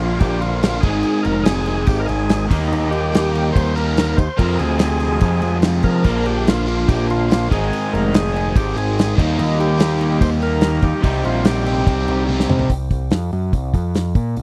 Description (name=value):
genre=classic rock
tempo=144 BPM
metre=4/4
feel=straight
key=C minor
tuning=A4 = 440 Hz
part: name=overdriven tonewheel organ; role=melody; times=0.0-12.2 s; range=Eb4 to C5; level=-27 LUFS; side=equal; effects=slow rotary speaker, tape echo
part: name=cranked stack guitar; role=riff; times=0.0-12.7 s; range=F2 to Eb4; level=-28 LUFS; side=equal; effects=overdrive
part: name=crunchy overdriven guitar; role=riff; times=0.0-12.7 s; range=Ab2 to Bb4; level=-28 LUFS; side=equal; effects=phaser
part: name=overdriven electric guitar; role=riff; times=0.0-12.7 s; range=F2 to F4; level=-27 LUFS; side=equal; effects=none
part: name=growling picked electric bass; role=bass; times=0.0-14.4 s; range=F1 to F3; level=-23 LUFS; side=equal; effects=overdrive
part: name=damped 70s drum kit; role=drums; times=0.2-14.4 s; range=crash cymbal, hi-hat, kick drum, snare drum, toms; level=-19 LUFS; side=equal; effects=none
room=little or no reverb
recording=dry, close 1970s-style studio recording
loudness=-18 LUFS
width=mono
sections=0.0-12.7 A section; 12.7-14.4 B section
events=drum fill 12.3-12.7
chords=0.0 Bb; 0.8 Ab; 2.5 Eb; 4.4 Fm; 6.0 Bb; 7.5 Ab; 9.2 Eb; 11.0 Cm; 12.7 Csus4; 13.7 N.C.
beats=0.20 0.62 | 1.04 1.46 1.87 2.29 | 2.71 3.13 3.54 3.96 | 4.38 4.80 5.21 5.63 | 6.05 6.46 6.88 7.29 | 7.71 8.13 8.54 8.96 | 9.37 9.79 10.20 10.62 | 11.03 11.45 11.86 12.28 | 12.69 13.11 13.52 13.94 | 14.36